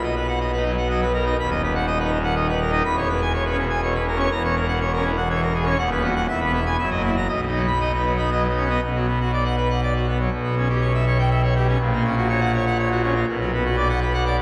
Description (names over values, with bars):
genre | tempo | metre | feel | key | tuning
classical, organ toccata | 122 BPM | 3/4 | straight | B major, B minor from 8.8 s | A4 = 438 Hz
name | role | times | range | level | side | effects
pipe organ, full organ | solo | 0.0-14.4 s | D#1 to B5 | -22 LUFS | equal | none
room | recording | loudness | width
wet church reverb, RT60 3.1 s | heard from further back in the room | -22 LUFS | mono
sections
0.0-8.8 A section; 8.8-14.4 B section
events
none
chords
0.0 B; 1.4 B/D#; 2.8 C#m7/E; 4.3 F#7/E; 5.8 B/D#; 6.3 E; 6.8 F#6; 7.3 B; 8.8 Bm; 10.3 C#m7b5/B; 11.8 F#/A#; 13.3 Bm